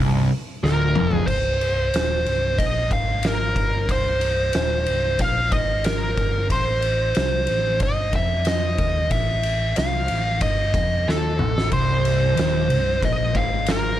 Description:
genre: stoner and doom metal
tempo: 92 BPM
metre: 4/4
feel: straight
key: C dorian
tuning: A4 = 440 Hz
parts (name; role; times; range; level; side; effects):
- fuzz guitar; riff; 0.0-1.3, 11.7-14.0 s; C2 to Bb2; -22 LUFS; equal; distortion
- picked electric bass; bass; 0.0-14.0 s; C1 to F2; -25 LUFS; equal; overdrive
- fuzz lead guitar; melody; 0.6-14.0 s; A4 to F5; -23 LUFS; right 1 dB; wah, distortion, analog delay
- oversized low-tuned drum kit; drums; 0.7-13.8 s; crash cymbal, kick drum, ride cymbal, snare drum, toms; -25 LUFS; equal; none
room: light reverb, studio reverb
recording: dark, warm production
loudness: -19 LUFS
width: side -12 dB against mid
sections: 0.0-1.3 A section; 1.3-14.0 B section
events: drum fill 0.6-1.3, 11.1-11.7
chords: 0.0 C5; 1.3 Cm; 6.5 A5; 11.7 Cm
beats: 0.63 | 1.28 1.94 2.59 3.24 | 3.89 4.55 5.20 5.85 | 6.50 7.16 7.81 8.46 | 9.11 9.77 10.42 11.07 | 11.72 12.38 13.03 13.68

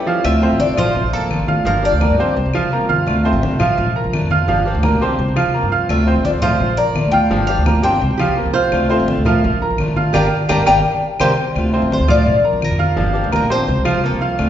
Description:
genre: latin, Cuban son and guajira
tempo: 170 BPM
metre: 4/4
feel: straight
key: D minor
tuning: A4 = 440 Hz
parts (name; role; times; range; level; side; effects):
- nylon-string guitar; second line; 0.0-0.2, 8.2-11.3 s; G4 to D5; -23 LUFS; right 3 dB; none
- fingerpicked swing-style acoustic guitar; accompaniment; 0.0-14.5 s; D3 to G4; -24 LUFS; left 2 dB; none
- clear grand piano; arpeggios; 0.1-14.5 s; F3 to F6; -19 LUFS; right 2 dB; none
- Cuban tres; melody; 0.2-2.3, 5.9-14.4 s; A4 to Bb5; -20 LUFS; left 3 dB; none
- upright bass; bass; 0.2-14.5 s; G1 to G2; -19 LUFS; equal; none
- claves; percussion; 0.2-14.5 s; none; -30 LUFS; left 4 dB; none
- congas; percussion; 0.2-14.5 s; none; -23 LUFS; left 1 dB; none
room: wet recital hall reverb, RT60 1.5 s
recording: recorded in a church or concert hall, nothing above 7.7 kHz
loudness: -14 LUFS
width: side -10 dB against mid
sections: 0.2-11.6 A section; 11.6-14.5 B section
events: band accent 10.1-11.6; Cuban tres solo 11.6-14.5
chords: 0.2 Dm7; 0.9 Bbmaj7; 1.7 Gm7; 2.4 C7sus4; 3.1 Dm7; 3.8 Bbmaj7; 4.5 Gm7; 5.2 C7sus4; 5.9 Dm7; 6.6 Bbmaj7; 7.3 Gm7; 8.0 C7sus4; 8.7 Dm7; 9.4 Bbmaj7; 10.1 Gm7; 10.8 C7(no3); 11.6 Dm7; 12.3 Bb; 13.0 Gm7; 13.7 C7sus4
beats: | 0.24 0.59 0.95 1.30 | 1.66 2.01 2.36 2.71 | 3.07 3.42 3.77 4.13 | 4.48 4.83 5.19 5.54 | 5.89 6.25 6.60 6.96 | 7.31 7.66 8.02 8.37 | 8.72 9.08 9.43 9.79 | 10.14 10.49 10.85 11.20 | 11.55 11.91 12.26 12.62 | 12.97 13.32 13.68 14.03 | 14.39

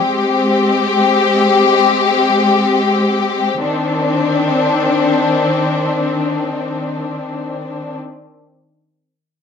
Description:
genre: hip hop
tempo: free time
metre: none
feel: none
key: C minor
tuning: A4 = 441 Hz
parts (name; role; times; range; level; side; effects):
- warm studio string section; sustained chords; 0.0-8.0 s; Eb3 to G4; -13 LUFS; left 3 dB; none
room: moderate digital room reverb, RT60 1.0 s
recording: dark, warm production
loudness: -13 LUFS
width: side -6 dB against mid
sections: 0.0-3.6 A section; 3.6-7.3 B section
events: none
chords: 0.0 Abmaj7; 3.6 Cmadd9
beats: free time

